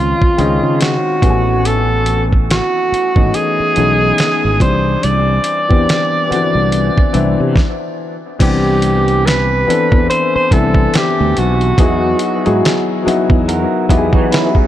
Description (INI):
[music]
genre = R&B, neo-soul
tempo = 71 BPM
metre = 4/4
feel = swing 58% on 16ths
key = unclear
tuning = A4 = 440 Hz
[part]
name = breathy tenor saxophone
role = melody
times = 0.0-13.1 s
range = E#4 to D5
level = -16 LUFS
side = right 2 dB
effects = analog delay
[part]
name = warm upright piano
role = accompaniment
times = 0.0-14.7 s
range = D3 to G#5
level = -17 LUFS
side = left 4 dB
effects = analog delay
[part]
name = fretless electric bass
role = bass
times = 0.0-14.5 s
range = G#1 to E3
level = -16 LUFS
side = equal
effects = ensemble chorus
[part]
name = dusty soul sampler-style drum kit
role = drums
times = 0.2-14.7 s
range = crash cymbal, hi-hat, kick drum, snare drum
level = -15 LUFS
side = right 1 dB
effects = none
[part]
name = electric guitar through a small old amp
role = second line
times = 13.5-14.7 s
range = B3 to Bb4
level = -19 LUFS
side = right 4 dB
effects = spring reverb, analog delay
[sound]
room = light reverb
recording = echo-heavy mix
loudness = -11 LUFS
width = side -12 dB against mid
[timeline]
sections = 0.0-8.4 A section; 8.4-14.7 B section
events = stop 7.6-8.4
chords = 0.0 C#maj9; 1.2 Amaj9; 4.6 Cmaj9; 11.8 Emaj9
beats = 0.80 | 1.64 2.49 3.33 4.18 | 5.02 5.87 6.71 7.56 | 8.40 9.25 10.10 10.94 | 11.79 12.63 13.47 14.32